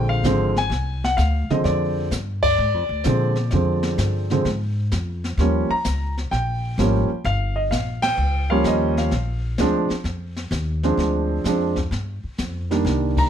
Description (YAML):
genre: jazz piano trio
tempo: 129 BPM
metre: 4/4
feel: swing 68% on 8ths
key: Bb mixolydian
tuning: A4 = 440 Hz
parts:
  - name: warm concert grand piano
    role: melody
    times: 0.0-13.3 s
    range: D3 to Bb5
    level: -21 LUFS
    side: right 1 dB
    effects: none
  - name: upright bass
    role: bass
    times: 0.0-13.3 s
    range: G1 to Bb2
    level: -23 LUFS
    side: equal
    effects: none
  - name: jazz brush drum kit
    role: drums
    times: 0.2-13.3 s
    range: brushed snare drum, crash cymbal, hi-hat, kick drum, ride cymbal, snare drum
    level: -29 LUFS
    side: left 2 dB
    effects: none
room: moderate studio reverb, RT60 0.7 s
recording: none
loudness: -19 LUFS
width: side -9 dB against mid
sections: 0.0-13.3 A section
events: band accent 2.4, 8.0, 13.1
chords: 0.0 Bb7; 5.4 Eb7; 9.1 Bb7; 11.0 Dm7b5; 11.9 G5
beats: 0.25 0.72 1.19 | 1.65 2.12 2.59 3.05 | 3.52 3.98 4.45 4.92 | 5.39 5.85 6.32 6.79 | 7.25 7.72 8.19 8.65 | 9.12 9.59 10.05 10.52 | 10.99 11.46 11.92 12.39 | 12.86